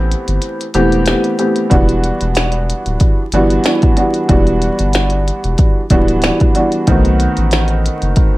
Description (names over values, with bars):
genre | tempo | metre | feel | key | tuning
hip hop, boom-bap hip-hop | 93 BPM | 4/4 | swing 56% on 16ths | E minor | A4 = 440 Hz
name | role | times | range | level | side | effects
warm upright piano | accompaniment | 0.0-8.4 s | D#3 to G4 | -15 LUFS | equal | cassette tape, high-pass filter, low-pass filter
soft dub sub bass | bass | 0.0-8.1 s | D1 to B1 | -16 LUFS | equal | none
minimal click drum kit | drums | 0.1-8.3 s | hi-hat, kick drum, snare drum | -14 LUFS | equal | none
room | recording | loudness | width
little or no reverb | vinyl crackle | -11 LUFS | side -18 dB against mid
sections
0.0-8.4 A section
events
break 0.0-1.7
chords
0.0 Am7; 1.7 Em9; 6.9 B7b9